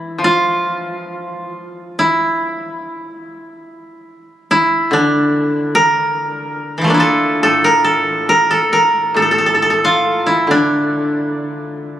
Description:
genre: japanese traditional, Japanese chamber music.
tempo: 63-73 BPM.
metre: 4/4.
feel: rubato.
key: D hirajoshi.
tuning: A4 = 442 Hz.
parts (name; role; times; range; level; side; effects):
koto; melody; 0.0-12.0 s; E3 to Bb4; -14 LUFS; equal; none.
koto; accompaniment; 0.0-12.0 s; A2 to F3; -24 LUFS; left 2 dB; none.
room: moderate cathedral reverb, RT60 4.9 s.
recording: recorded on a phone in the room, club reverb.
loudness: -12 LUFS.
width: side -11 dB against mid.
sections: 0.0-12.0 A section.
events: none.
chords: none.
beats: 0.65 1.53 | 2.40 3.25 4.09 4.92 | 5.75 6.58 7.44 8.29 | 9.15 10.04 10.94 11.88.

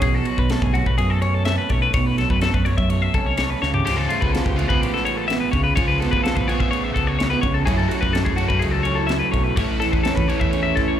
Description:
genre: math rock and midwest emo.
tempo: 126 BPM.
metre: 4/4.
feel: straight.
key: unclear.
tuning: A4 = 440 Hz.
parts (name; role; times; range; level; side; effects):
electric guitar through a small old amp; accompaniment; 0.0-11.0 s; F#2 to A4; -26 LUFS; right 7 dB; slapback echo.
twelve-string electric guitar; arpeggios; 0.0-11.0 s; E#4 to E5; -24 LUFS; left 6 dB; none.
fingered electric bass; bass; 0.0-11.0 s; A1 to F#2; -23 LUFS; equal; none.
crisp fusion drum kit; drums; 0.0-10.9 s; crash cymbal, kick drum, ride cymbal, snare drum, toms; -23 LUFS; equal; none.
overdriven electric guitar; riff; 3.8-11.0 s; C#3 to A4; -27 LUFS; equal; slapback echo.
room: small room ambience.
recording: live gig heard through the venue's PA, club reverb.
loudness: -18 LUFS.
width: side -10 dB against mid.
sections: 0.0-11.0 A section.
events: drum fill 3.6.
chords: 0.0 B9sus4; 3.6 C#7b13; 7.7 F#m9; 9.6 A69.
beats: | 0.02 0.50 0.98 1.46 | 1.94 2.42 2.90 3.38 | 3.86 4.33 4.81 5.29 | 5.77 6.24 6.72 7.19 | 7.67 8.14 8.62 9.10 | 9.57 10.05 10.52.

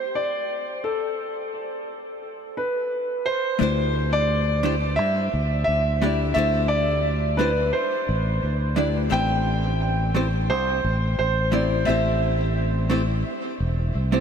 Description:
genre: sunset chillout.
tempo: 87 BPM.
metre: 4/4.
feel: swing 54% on 16ths.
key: unclear.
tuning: A4 = 439 Hz.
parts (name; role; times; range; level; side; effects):
warm concert grand piano; melody; 0.0-12.5 s; A4 to G5; -25 LUFS; right 1 dB; tape echo.
hollow-body jazz guitar; accompaniment; 0.0-14.2 s; A3 to D5; -27 LUFS; left 1 dB; auto-pan, diffuse ambient delay.
fingered electric bass; bass; 3.6-14.2 s; E1 to G2; -23 LUFS; equal; none.
room: wet huge ambient reverb, RT60 7.7 s.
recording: dreamy mix soaked in reverb.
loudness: -21 LUFS.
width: side -7 dB against mid.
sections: 0.0-3.6 A section; 3.6-14.2 B section.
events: none.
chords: 0.0 Am7; 3.6 D9sus4; 9.1 Am7.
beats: 0.15 | 0.84 1.53 2.22 2.91 | 3.60 4.29 4.98 5.67 | 6.36 7.05 7.74 8.43 | 9.12 9.81 10.50 11.19 | 11.88 12.57 13.26 13.95.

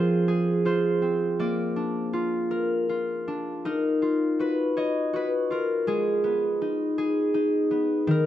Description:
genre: children's music, lullaby.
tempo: 81 BPM.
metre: 3/4.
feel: straight.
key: Eb minor.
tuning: A4 = 439 Hz.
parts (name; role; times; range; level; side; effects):
concert harp; solo; 0.0-8.3 s; Eb3 to Eb5; -23 LUFS; equal; none.
room: light reverb.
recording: dark, warm production.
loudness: -23 LUFS.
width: side -12 dB against mid.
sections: 0.0-3.7 A section; 3.7-8.3 B section.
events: none.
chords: 0.0 Fm; 1.4 Bb; 3.7 Ebmadd9; 5.9 Abm.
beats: 0.65 | 1.39 2.14 2.89 | 3.65 4.40 5.14 | 5.88 6.62 7.35 | 8.09.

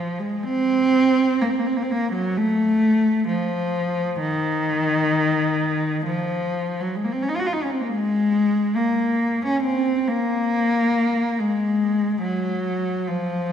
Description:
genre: classical, free, expressive piece for unaccompanied cello.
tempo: 56-73 BPM.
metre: 4/4.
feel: rubato.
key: Bb minor.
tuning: A4 = 440 Hz.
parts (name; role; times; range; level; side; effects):
warm cello; solo; 0.0-13.5 s; Eb3 to Gb4; -19 LUFS; equal; none.
room: wet concert hall reverb, RT60 2.2 s.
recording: none.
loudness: -19 LUFS.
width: side -8 dB against mid.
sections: 0.0-13.5 A section.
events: none.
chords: none.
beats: 0.42 1.41 | 2.36 3.28 4.18 5.11 | 6.04 6.97 7.86 8.75 | 9.62 10.53 11.38 12.21 | 13.08.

